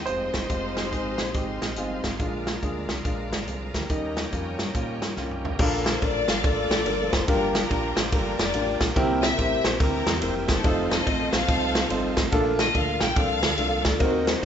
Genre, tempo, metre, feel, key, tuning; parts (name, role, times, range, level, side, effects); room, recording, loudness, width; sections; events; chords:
uptempo gospel; 143 BPM; 4/4; swing 63% on 8ths; Bb major from 5.6 s; A4 = 438 Hz
clear baby grand piano; melody; 0.0-2.0 s; Ab4 to C5; -33 LUFS; right 2 dB
warm studio string section; melody; 0.0-2.0, 5.9-14.4 s; D4 to G5; -28 LUFS; left 3 dB
bright tonewheel organ; sustained chords; 0.0-14.4 s; D3 to G5; -36 LUFS; right 4 dB; slow rotary speaker, chorus vibrato
clear studio string section; sustained chords; 0.0-5.6 s; Db5 to C6; -39 LUFS; left 2 dB
fingered electric bass; bass; 0.0-14.4 s; F1 to Bb2; -33 LUFS; equal
warm upright piano; accompaniment; 0.1-14.4 s; G2 to Ab5; -28 LUFS; equal
natural country drum kit; drums; 0.1-14.3 s; crash cymbal, hi-hat, kick drum, ride cymbal, snare drum, toms; -26 LUFS; equal
moderate recital hall reverb, RT60 1.4 s; recorded in a church or concert hall, nothing above 7.8 kHz; -22 LUFS; side -8 dB against mid
0.0-5.6 A section; 5.6-14.4 B section
upright piano fill 1.3-2.2; drum fill 5.2-5.6
0.0 Fm7; 2.2 Bb7; 3.9 Eb7; 5.6 Bbmaj7; 9.0 C7; 10.6 F7; 12.3 Bbmaj7